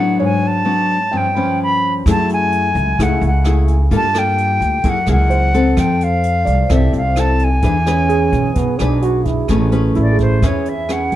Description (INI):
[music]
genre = bossa nova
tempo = 129 BPM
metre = 4/4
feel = straight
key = A major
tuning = A4 = 440 Hz
[part]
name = concert flute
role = melody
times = 0.0-11.2 s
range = C5 to B5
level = -18 LUFS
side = equal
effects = none
[part]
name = nylon-string guitar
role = accompaniment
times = 0.0-11.2 s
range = G2 to B4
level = -19 LUFS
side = left 2 dB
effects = none
[part]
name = warm grand piano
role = accompaniment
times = 0.0-11.2 s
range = E4 to B5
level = -26 LUFS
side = right 5 dB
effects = none
[part]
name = upright bass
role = bass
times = 2.1-11.2 s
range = A1 to G2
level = -16 LUFS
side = equal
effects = none
[part]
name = jazz brush drum kit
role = drums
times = 2.1-11.2 s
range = hi-hat, kick drum, rim click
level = -23 LUFS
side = right 1 dB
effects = none
[part]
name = mellow trombone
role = second line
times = 7.9-9.5 s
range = B3 to F#4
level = -20 LUFS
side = right 6 dB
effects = none
[sound]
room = light reverb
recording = dark, warm production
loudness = -13 LUFS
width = side -13 dB against mid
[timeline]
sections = 0.0-9.5 A section; 9.5-11.2 B section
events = flute solo 9.5-11.2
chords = 0.2 G#m7b5; 1.1 G7#11; 2.1 F#m9; 3.9 Gm9; 4.8 F#9; 5.8 Fmaj7; 7.6 E7; 9.5 Amaj9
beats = | 0.20 0.66 1.13 1.59 | 2.06 2.52 2.98 3.45 | 3.91 4.38 4.84 5.31 | 5.77 6.24 6.70 7.17 | 7.63 8.10 8.56 9.02 | 9.49 9.95 10.42 10.88